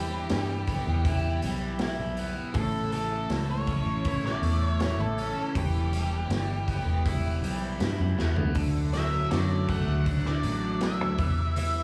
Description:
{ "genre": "psychedelic rock", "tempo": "80 BPM", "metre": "4/4", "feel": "straight", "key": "E dorian", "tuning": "A4 = 440 Hz", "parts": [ { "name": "octave-fuzz lead guitar", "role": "melody", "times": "0.0-11.8 s", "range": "G4 to F#5", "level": "-36 LUFS", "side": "equal", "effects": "distortion, analog delay" }, { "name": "combo organ", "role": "sustained chords", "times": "0.0-11.8 s", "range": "C#3 to B4", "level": "-43 LUFS", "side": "equal", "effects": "none" }, { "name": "crunchy overdriven guitar", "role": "riff", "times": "0.0-11.8 s", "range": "A2 to E4", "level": "-35 LUFS", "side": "equal", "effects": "phaser, analog delay" }, { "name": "fingered electric bass", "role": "bass", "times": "0.0-11.8 s", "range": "E1 to G2", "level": "-31 LUFS", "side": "equal", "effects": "none" }, { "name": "raw garage drum kit", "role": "drums", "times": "0.3-11.7 s", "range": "hi-hat, kick drum, snare drum, toms", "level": "-34 LUFS", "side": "equal", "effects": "none" } ], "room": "light reverb, small room ambience", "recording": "echo-heavy mix", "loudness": "-28 LUFS", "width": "mono", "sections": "0.0-11.8 A section", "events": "drum fill 8.2-8.6", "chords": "0.0 Em; 2.5 A; 5.6 Em; 8.6 D; 11.2 Em" }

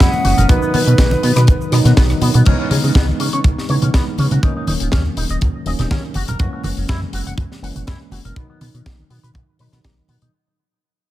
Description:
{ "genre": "nu-disco, nu disco", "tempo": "122 BPM", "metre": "4/4", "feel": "swing 53% on 16ths", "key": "unclear", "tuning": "A4 = 440 Hz", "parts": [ { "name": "breathy mellow silver concert flute", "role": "melody", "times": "0.0-1.9 s", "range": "B4 to F#5", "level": "-21 LUFS", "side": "equal", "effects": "dub echo" }, { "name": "tine electric piano", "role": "accompaniment", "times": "0.0-10.3 s", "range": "D#3 to D#4", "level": "-23 LUFS", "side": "right 1 dB", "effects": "medium stereo tremolo, dub echo" }, { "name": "lush unison pad", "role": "sustained chords", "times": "0.0-2.5 s", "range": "D#6", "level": "-36 LUFS", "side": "left 1 dB", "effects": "none" }, { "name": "electric guitar with an envelope filter", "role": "riff", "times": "0.0-10.3 s", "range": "B2 to F#5", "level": "-27 LUFS", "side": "left 1 dB", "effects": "lush chorus, low-pass filter, dub echo" }, { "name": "chorused synth bass", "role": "bass", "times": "0.0-10.3 s", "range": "D#1 to C#3", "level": "-17 LUFS", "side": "equal", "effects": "none" }, { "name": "kick drum", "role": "drums", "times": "0.0-9.9 s", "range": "none", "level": "-16 LUFS", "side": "equal", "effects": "none" }, { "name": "tight funk drum kit", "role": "drums", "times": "0.0-10.3 s", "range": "crash cymbal, hi-hat, rim click, snare drum", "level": "-24 LUFS", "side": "left 2 dB", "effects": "none" }, { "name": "cabasa and congas", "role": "percussion", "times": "0.0-10.3 s", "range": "none", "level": "-23 LUFS", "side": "right 2 dB", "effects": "none" } ], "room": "light reverb, small room ambience", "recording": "echo-heavy mix", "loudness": "-13 LUFS", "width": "side -14 dB against mid", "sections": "0.0-2.5 A section; 2.5-10.3 B section", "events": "drop 0.0-2.5; fade-out 2.5-10.3; filter sweep on analog synth bass 2.5-10.3; filter sweep on clean electric guitar 2.5-10.3", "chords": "0.5 B; 2.5 C#m7; 4.4 D#m7; 6.2 F#7; 8.4 B" }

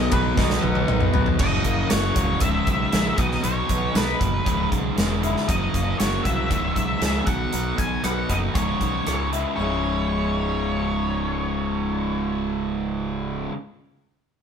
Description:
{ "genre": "quiet-loud alternative rock", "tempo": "117 BPM", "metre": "4/4", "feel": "straight", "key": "C# dorian", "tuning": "A4 = 440 Hz", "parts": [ { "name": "octave-fuzz lead guitar", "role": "melody", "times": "0.0-13.5 s", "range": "B4 to G#5", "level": "-28 LUFS", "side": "equal", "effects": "distortion" }, { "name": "fingerpicked swing-style acoustic guitar", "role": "arpeggios", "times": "0.0-13.5 s", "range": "C#2 to B4", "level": "-32 LUFS", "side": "left 7 dB", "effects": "none" }, { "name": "fuzz guitar", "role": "riff", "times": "0.0-13.5 s", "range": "C#2 to B3", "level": "-26 LUFS", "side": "right 1 dB", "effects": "distortion" }, { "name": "fuzz fingered electric bass", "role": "bass", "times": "0.0-13.5 s", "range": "C#1 to C#2", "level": "-27 LUFS", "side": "equal", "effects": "overdrive" }, { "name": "big rock drum kit", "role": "drums", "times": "0.1-9.4 s", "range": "crash cymbal, hi-hat, kick drum, ride cymbal, rim click, snare drum, toms", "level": "-24 LUFS", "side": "equal", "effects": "none" } ], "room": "moderate stone room reverb, RT60 1.1 s", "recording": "band playing live in one room", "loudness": "-20 LUFS", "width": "side -7 dB against mid", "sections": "0.0-1.4 A section; 1.4-9.6 B section; 9.6-13.7 C section", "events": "drum fill 0.4-1.4", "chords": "0.0 B; 1.4 F#; 2.4 C#m; 3.2 B; 4.5 C#m; 5.5 F#; 6.5 C#m; 7.3 B; 8.6 C#m" }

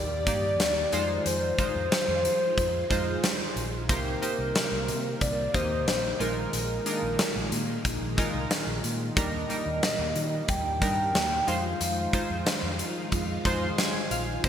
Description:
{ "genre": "1980s-style pop", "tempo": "91 BPM", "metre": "4/4", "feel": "straight", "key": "unclear", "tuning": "A4 = 438 Hz", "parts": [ { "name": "hollow clarinet-like synth lead", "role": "melody", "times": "0.0-14.5 s", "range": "Bb4 to G5", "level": "-30 LUFS", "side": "left 1 dB", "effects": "chorus, digital delay" }, { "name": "chorused retro synth keys", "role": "accompaniment", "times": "0.0-14.5 s", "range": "Bb2 to C6", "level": "-32 LUFS", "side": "right 1 dB", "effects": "none" }, { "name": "string machine, full ensemble", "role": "sustained chords", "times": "0.0-14.5 s", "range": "Bb2 to D5", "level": "-36 LUFS", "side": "equal", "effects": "phaser, ensemble chorus" }, { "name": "fingered electric bass", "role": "bass", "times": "0.0-14.5 s", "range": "Bb1 to F3", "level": "-33 LUFS", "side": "equal", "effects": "none" }, { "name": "big rock drum kit", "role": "drums", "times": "0.3-14.5 s", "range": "hi-hat, kick drum, snare drum", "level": "-29 LUFS", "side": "equal", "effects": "none" } ], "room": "wet lush hall reverb, RT60 2.2 s", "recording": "bright 1980s-style digital production", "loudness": "-25 LUFS", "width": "side -9 dB against mid", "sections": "0.0-14.5 A section", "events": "synth keys fill 13.1-14.4", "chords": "0.0 Ebmaj7; 0.9 Fm7; 3.9 Cm7; 6.2 Bb7sus4; 9.2 Ebmaj7; 11.5 Fm7" }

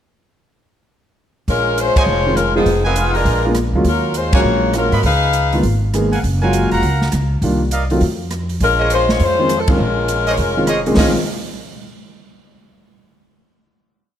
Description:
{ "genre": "jazz, big band swing", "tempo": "202 BPM", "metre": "4/4", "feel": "swing 63% on 8ths", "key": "Bb minor", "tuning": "A4 = 440 Hz", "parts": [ { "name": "warm saxophone section", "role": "melody", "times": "1.5-5.6, 8.6-11.2 s", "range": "Eb3 to F5", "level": "-17 LUFS", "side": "left 2 dB", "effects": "none" }, { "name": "upright bass", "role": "bass", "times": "1.5-11.1 s", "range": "F1 to Bb2", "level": "-19 LUFS", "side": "equal", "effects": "none" }, { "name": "swinging big-band drum kit", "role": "drums", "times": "1.5-11.1 s", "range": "hi-hat, kick drum, ride cymbal, rim click, snare drum", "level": "-22 LUFS", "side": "right 1 dB", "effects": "none" }, { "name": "clear trumpet section", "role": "stabs", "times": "2.0-11.1 s", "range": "Ab4 to Cb6", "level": "-23 LUFS", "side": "right 2 dB", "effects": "none" }, { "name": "warm concert grand piano", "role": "accompaniment", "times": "2.3-11.1 s", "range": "Bb2 to F5", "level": "-19 LUFS", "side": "equal", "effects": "none" } ], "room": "moderate recital hall reverb, RT60 1.5 s", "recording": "none", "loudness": "-14 LUFS", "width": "side -10 dB against mid", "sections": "1.5-11.0 A section; 11.0-12.2 final chord", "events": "band accent 1.9, 4.3, 9.6", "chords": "1.5 Bbm11; 2.7 Fm7b5; 3.3 Bb7b9; 3.9 Ebm11; 5.0 Db13; 6.2 Gbmaj9; 7.4 Cm11; 8.0 N.C.; 8.6 Bbm11" }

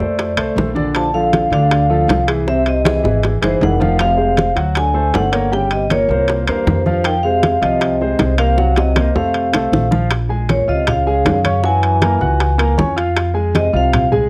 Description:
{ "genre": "Afro-Cuban jazz", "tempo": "157 BPM", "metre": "4/4", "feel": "straight", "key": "Bb minor from 10.1 s", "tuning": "A4 = 440 Hz", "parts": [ { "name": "vibraphone with medium hard mallets", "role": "melody", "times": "0.0-14.1 s", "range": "C5 to A5", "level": "-21 LUFS", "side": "equal", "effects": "cassette tape" }, { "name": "breathy trombone", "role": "second line", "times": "0.0-14.1 s", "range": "G2 to F3", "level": "-26 LUFS", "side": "equal", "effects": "cassette tape" }, { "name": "clear concert grand piano", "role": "accompaniment", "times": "0.0-14.3 s", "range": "C3 to Gb6", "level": "-23 LUFS", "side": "equal", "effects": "cassette tape" }, { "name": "upright bass", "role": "bass", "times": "0.0-14.3 s", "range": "F1 to Gb2", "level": "-21 LUFS", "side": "equal", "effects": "none" }, { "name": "bongos", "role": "percussion", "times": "0.0-14.1 s", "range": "none", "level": "-24 LUFS", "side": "equal", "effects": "none" }, { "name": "congas", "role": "percussion", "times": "0.2-14.3 s", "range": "none", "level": "-24 LUFS", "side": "equal", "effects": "none" }, { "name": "timbales", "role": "percussion", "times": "0.2-14.1 s", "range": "none", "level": "-25 LUFS", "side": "equal", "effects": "none" } ], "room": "moderate studio reverb, RT60 0.7 s", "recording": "home recording on cassette", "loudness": "-16 LUFS", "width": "mono", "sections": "0.0-10.1 A section; 10.1-14.3 B section", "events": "drum fill 2.9-4.0, 8.6-10.1", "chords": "0.2 F6; 0.9 Bbmaj7; 2.5 Caug; 4.0 Fm; 4.8 D7b13; 5.5 Gdim; 6.3 C7; 7.1 Fm7; 8.6 Cm7b5; 9.3 F; 10.1 Bbm7; 11.6 Gb9; 13.2 Fm" }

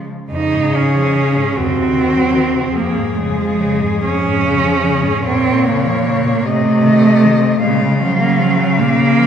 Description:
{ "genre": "classical, lyrical piece for cello ensemble", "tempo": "49 BPM (dotted quarters)", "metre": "6/8", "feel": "uneven beats, rubato", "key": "Db major", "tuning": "A4 = 440 Hz", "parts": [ { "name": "rich cello", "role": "second line", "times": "0.0-9.3 s", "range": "Gb3 to Eb4", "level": "-15 LUFS", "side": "right 2 dB", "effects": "none" }, { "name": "rich cello", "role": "accompaniment", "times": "0.0-9.3 s", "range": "F2 to Bb3", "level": "-21 LUFS", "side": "left 3 dB", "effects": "none" }, { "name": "warm cello", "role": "bass", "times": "0.0-9.3 s", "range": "Eb2 to Db3", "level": "-19 LUFS", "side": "equal", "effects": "none" }, { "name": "rich cello", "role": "melody", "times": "0.3-9.3 s", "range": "Gb4 to F5", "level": "-21 LUFS", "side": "left 6 dB", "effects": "none" } ], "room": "wet concert hall reverb, RT60 2.5 s", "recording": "recorded in a church or concert hall", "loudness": "-12 LUFS", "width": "side -8 dB against mid", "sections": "0.3-9.3 A section", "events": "none", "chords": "0.3 Db/F; 1.6 Cdim/Eb; 2.7 Db/F; 5.3 Bbm/F; 6.5 Adim; 7.6 Bbm" }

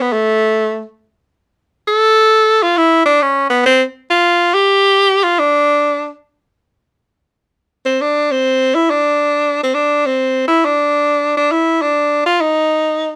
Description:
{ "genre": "jazz", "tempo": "free time", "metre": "none", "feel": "none", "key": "unclear", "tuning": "A4 = 440 Hz", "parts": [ { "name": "bright tenor saxophone", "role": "solo", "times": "0.0-13.1 s", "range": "A3 to A4", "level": "-14 LUFS", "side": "equal", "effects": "none" } ], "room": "light reverb", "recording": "none", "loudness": "-14 LUFS", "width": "mono", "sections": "0.0-7.1 A section; 7.1-13.2 B section", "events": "tenor saxophone solo 0.0-7.1", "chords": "none" }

